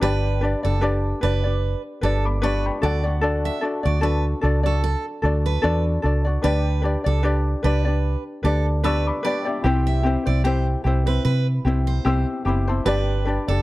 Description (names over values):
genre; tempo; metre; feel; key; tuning
pop; 75 BPM; 4/4; swing 55% on 16ths; unclear; A4 = 440 Hz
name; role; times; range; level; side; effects
clear upright piano; accompaniment; 0.0-13.6 s; D4 to E6; -33 LUFS; left 3 dB; plate reverb
ukulele; accompaniment; 0.0-13.6 s; C4 to D5; -24 LUFS; left 2 dB; plate reverb
picked steel-string acoustic guitar; arpeggios; 0.0-13.6 s; A4 to E5; -30 LUFS; right 8 dB; plate reverb
vintage muted fingered electric bass; bass; 0.0-13.6 s; F#1 to C3; -21 LUFS; equal; none
room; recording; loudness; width
light reverb; dark, warm production; -19 LUFS; side -18 dB against mid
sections
0.0-13.6 A section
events
none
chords
0.0 G; 2.8 D; 6.4 G; 9.7 C; 12.9 G